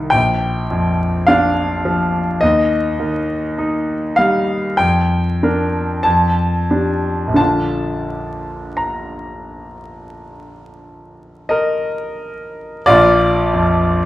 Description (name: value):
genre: classical, romantic nocturne for solo piano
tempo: 42-53 BPM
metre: 4/4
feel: rubato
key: Bb major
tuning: A4 = 439 Hz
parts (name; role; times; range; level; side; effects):
- clear concert grand piano; solo; 0.0-14.1 s; Bb1 to Bb5; -15 LUFS; equal; none
room: moderate recital hall reverb, RT60 1.3 s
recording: vinyl crackle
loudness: -14 LUFS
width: side -15 dB against mid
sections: 0.0-12.9 A section; 12.9-14.1 B section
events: none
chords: 0.1 Bb; 2.4 Ebadd9; 4.8 Bb/F; 6.0 F69; 7.4 Bb